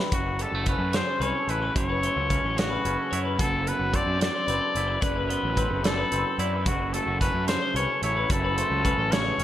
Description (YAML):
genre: math rock and midwest emo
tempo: 73 BPM (dotted quarters)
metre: 6/8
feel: straight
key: unclear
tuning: A4 = 440 Hz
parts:
  - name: twangy electric guitar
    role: accompaniment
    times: 0.0-9.4 s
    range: F#2 to E4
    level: -32 LUFS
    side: right 6 dB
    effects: none
  - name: electric guitar through a small old amp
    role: arpeggios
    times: 0.0-9.4 s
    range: F#4 to D5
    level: -32 LUFS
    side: left 5 dB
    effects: spring reverb, digital delay
  - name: clear trumpet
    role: melody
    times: 0.1-9.4 s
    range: F#4 to D5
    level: -28 LUFS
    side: left 2 dB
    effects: none
  - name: fuzz picked electric bass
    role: bass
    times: 0.1-9.4 s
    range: F#1 to F#2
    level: -30 LUFS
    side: equal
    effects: overdrive
  - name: modern studio drum kit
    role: drums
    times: 0.1-9.4 s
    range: hi-hat, kick drum, snare drum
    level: -28 LUFS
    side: equal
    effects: gated reverb
room: light reverb, small room ambience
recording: bright 1980s-style digital production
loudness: -23 LUFS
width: side -12 dB against mid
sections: 0.1-9.4 A section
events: none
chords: 0.1 F#m7; 3.4 D13/F#; 6.7 F#m7